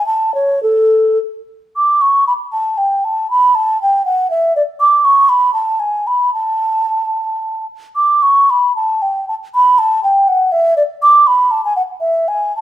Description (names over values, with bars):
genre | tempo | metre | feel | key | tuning
classical, baroque-style fantasia for unaccompanied flute | 104-124 BPM | 3/4 | rubato | unclear | A4 = 441 Hz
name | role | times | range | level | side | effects
mellow hollow baroque flute | solo | 0.0-12.6 s | A4 to D6 | -11 LUFS | right 1 dB | none
room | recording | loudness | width
moderate stone room reverb, RT60 1.0 s | none | -11 LUFS | side -13 dB against mid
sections
0.0-1.8 A section; 1.8-12.6 A section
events
none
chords
none